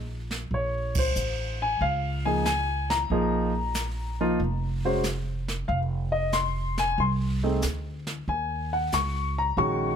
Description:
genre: jazz piano trio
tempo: 93 BPM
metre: 4/4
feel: swing 69% on 8ths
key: Bb minor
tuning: A4 = 440 Hz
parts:
  - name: upright bass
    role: bass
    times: 0.0-10.0 s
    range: F1 to Eb2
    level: -29 LUFS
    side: right 1 dB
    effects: none
  - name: jazz brush drum kit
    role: drums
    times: 0.3-10.0 s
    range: brushed snare drum, hi-hat, kick drum, ride cymbal, snare drum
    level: -33 LUFS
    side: right 2 dB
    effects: none
  - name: warm concert grand piano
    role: melody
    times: 0.5-10.0 s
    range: Eb3 to Db6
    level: -26 LUFS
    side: left 2 dB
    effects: plate reverb
room: light reverb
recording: close, detailed microphones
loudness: -24 LUFS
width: side -8 dB against mid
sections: 0.0-10.0 A section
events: band accent 0.8-1.2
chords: 0.0 N.C.; 0.5 Bbm7; 5.7 F5; 8.3 Ebm7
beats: | 0.51 1.16 1.81 2.46 | 3.10 3.75 4.40 5.05 | 5.69 6.34 6.99 7.63 | 8.28 8.93 9.57

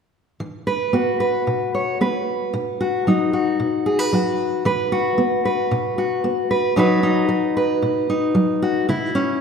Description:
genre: folk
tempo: 113 BPM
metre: 4/4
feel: straight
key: unclear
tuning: A4 = 438 Hz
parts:
  - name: fingerpicked steel-string acoustic guitar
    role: solo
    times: 0.4-9.4 s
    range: B2 to C#5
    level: -18 LUFS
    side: equal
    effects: none
room: wet scoring stage reverb, RT60 1.8 s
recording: recorded in a church or concert hall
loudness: -18 LUFS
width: side -6 dB against mid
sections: 0.4-4.6 A section; 4.6-9.4 B section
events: none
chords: 0.4 Esus2; 2.5 B; 4.6 Esus2; 6.8 B; 8.9 C#m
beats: | 0.40 0.93 1.46 2.00 | 2.53 3.06 3.59 4.12 | 4.65 5.18 5.71 6.24 | 6.77 7.30 7.83 8.36 | 8.88

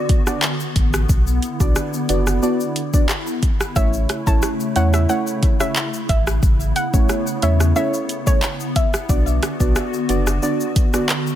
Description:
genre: dancehall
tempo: 90 BPM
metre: 4/4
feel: straight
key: A major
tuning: A4 = 440 Hz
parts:
  - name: deep mellow chord stab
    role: accompaniment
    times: 0.0-11.1 s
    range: A3 to D5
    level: -23 LUFS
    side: right 2 dB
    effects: chorus
  - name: hollow soft pad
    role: sustained chords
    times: 0.0-11.4 s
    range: C#3 to F#4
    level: -26 LUFS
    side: left 1 dB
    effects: ensemble chorus, sidechain pumping
  - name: deep house drum kit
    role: drums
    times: 0.1-11.4 s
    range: handclaps, hi-hat, kick drum, rim click, shaker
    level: -19 LUFS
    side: equal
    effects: none
  - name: egg shaker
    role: percussion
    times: 0.3-11.4 s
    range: none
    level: -36 LUFS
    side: left 10 dB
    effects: none
  - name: sub bass with octave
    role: bass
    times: 0.8-10.4 s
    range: F#1 to E2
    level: -19 LUFS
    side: equal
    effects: none
  - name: soft round pluck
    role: melody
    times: 3.8-8.9 s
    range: C#5 to A5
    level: -26 LUFS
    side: equal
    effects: chorus, digital delay
room: little or no reverb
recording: none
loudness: -16 LUFS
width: side -12 dB against mid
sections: 0.0-11.4 A section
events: none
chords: 0.0 Bm; 3.8 A; 9.1 Bm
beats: 0.43 | 1.09 1.76 2.43 3.09 | 3.76 4.43 5.09 5.76 | 6.43 7.09 7.76 8.43 | 9.09 9.76 10.43 11.09

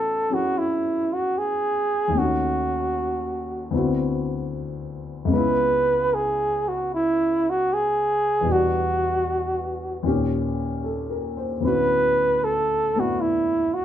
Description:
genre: jazz ballad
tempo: 76 BPM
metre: 4/4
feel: swing 68% on 8ths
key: unclear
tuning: A4 = 439 Hz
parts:
  - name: breathy flugelhorn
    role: melody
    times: 0.0-13.8 s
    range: E4 to B4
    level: -21 LUFS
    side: right 2 dB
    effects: none
  - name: dark baby grand piano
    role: accompaniment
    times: 0.0-13.8 s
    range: C#2 to C5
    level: -25 LUFS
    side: left 3 dB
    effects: none
room: moderate studio reverb, RT60 0.6 s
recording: band playing live in one room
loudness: -20 LUFS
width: side -10 dB against mid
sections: 0.0-13.8 A section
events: none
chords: 0.0 A69; 2.1 D#m7b5; 3.7 D13; 5.3 C#m7; 8.5 Em9; 10.0 D#7; 11.6 Dmaj13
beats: 0.56 1.35 | 2.14 2.94 3.73 4.52 | 5.31 6.10 6.89 7.67 | 8.46 9.25 10.04 10.83 | 11.63 12.42 13.21

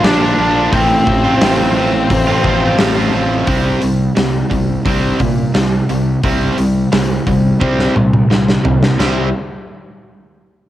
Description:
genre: quiet-loud alternative rock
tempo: 87 BPM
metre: 4/4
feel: straight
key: unclear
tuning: A4 = 440 Hz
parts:
  - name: octave-fuzz lead guitar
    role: melody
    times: 0.0-2.8 s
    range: C4 to D5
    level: -16 LUFS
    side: left 1 dB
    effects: distortion, cassette tape
  - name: cranked stack guitar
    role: riff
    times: 0.0-9.3 s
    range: A2 to F4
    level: -17 LUFS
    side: right 5 dB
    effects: overdrive
  - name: overdriven electric guitar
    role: riff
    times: 0.0-9.3 s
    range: A2 to F4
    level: -20 LUFS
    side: left 6 dB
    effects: spring reverb
  - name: fuzz fingered electric bass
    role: bass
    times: 0.0-9.3 s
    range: A1 to Bb2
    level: -19 LUFS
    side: equal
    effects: overdrive
  - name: big rock drum kit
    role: drums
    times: 0.0-9.2 s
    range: hi-hat, kick drum, snare drum, splash cymbal, toms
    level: -18 LUFS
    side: equal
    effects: cassette tape
room: light reverb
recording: home recording on cassette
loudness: -11 LUFS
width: side -13 dB against mid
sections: 0.0-3.5 A section; 3.5-9.0 B section; 9.0-10.7 C section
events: drum fill 7.6-9.0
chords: 0.0 Bb; 0.7 F/A; 3.5 C5; 9.0 C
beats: 0.04 | 0.73 1.42 2.10 2.79 | 3.48 4.17 4.86 5.55 | 6.24 6.93 7.62 8.31 | 8.99

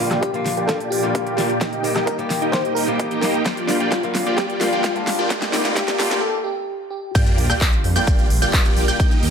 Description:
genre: EDM, festival progressive house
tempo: 130 BPM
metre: 4/4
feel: straight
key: Bb major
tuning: A4 = 440 Hz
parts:
  - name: bell-like FM electric piano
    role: melody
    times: 0.0-7.1 s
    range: D4 to C5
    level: -25 LUFS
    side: equal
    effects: chorus, tremolo, dub echo
  - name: fingerpicked swing-style acoustic guitar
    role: accompaniment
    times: 0.0-6.2 s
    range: D3 to G4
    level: -26 LUFS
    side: left 4 dB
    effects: sidechain pumping, dub echo
  - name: lush unison pad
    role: sustained chords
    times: 0.0-9.3 s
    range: Bb2 to G4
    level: -30 LUFS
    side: equal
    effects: chorus, phaser, sidechain pumping
  - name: supersaw chords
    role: riff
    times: 0.0-9.3 s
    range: Bb3 to G5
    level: -23 LUFS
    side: right 1 dB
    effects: phaser, sidechain pumping, low-pass filter, dub echo
  - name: riser and sub drop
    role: sound effects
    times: 1.8-9.0 s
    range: none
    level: -31 LUFS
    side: equal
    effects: none
  - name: pop drum kit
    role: drums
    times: 0.1-9.3 s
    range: crash cymbal, handclaps, hi-hat, rim click, shaker, snare drum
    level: -25 LUFS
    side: equal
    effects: none
  - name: electronic kick drum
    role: drums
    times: 0.2-9.1 s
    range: none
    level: -18 LUFS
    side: equal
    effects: overdrive, high-pass filter on kick
  - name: wide unison pluck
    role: arpeggios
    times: 7.2-9.3 s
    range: G6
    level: -26 LUFS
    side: right 2 dB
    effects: sidechain pumping, dub echo
  - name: detuned saw bass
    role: bass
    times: 7.4-9.3 s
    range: Bb1 to F2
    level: -20 LUFS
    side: equal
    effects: sidechain pumping
room: light reverb, digital ambience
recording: high-pass filter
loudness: -17 LUFS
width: side -7 dB against mid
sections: 0.0-7.2 A section; 7.2-9.3 B section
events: build-up 0.0-7.2; drum fill 0.0-6.2; filter sweep on supersaw synth 0.0-7.2; filter sweep 0.0-7.2; riser 1.8-6.2; break 6.2-7.2; drop 7.2-9.3; impact 7.2-9.0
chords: 0.0 Bb6; 1.6 Eb; 3.5 Bb6; 5.3 Cm; 7.2 Bb6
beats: 0.23 0.69 1.15 | 1.61 2.07 2.53 3.00 | 3.46 3.92 4.38 4.84 | 5.30 5.76 6.23 6.69 | 7.15 7.61 8.07 8.53 | 9.00

